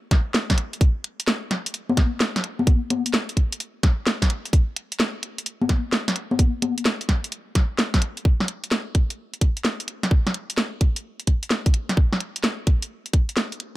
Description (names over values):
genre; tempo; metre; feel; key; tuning
UK garage; 129 BPM; 4/4; swing 66% on 16ths; none; none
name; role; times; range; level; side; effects
electronic kick drum; drums; 0.1-13.3 s; none; -18 LUFS; equal; none
garage drum kit; drums; 0.1-13.7 s; congas, hi-hat, snare drum; -23 LUFS; equal; none
room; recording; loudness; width
little or no reverb; none; -20 LUFS; side -17 dB against mid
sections
0.0-8.3 A section; 8.3-13.8 B section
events
drop 0.0-8.3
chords
none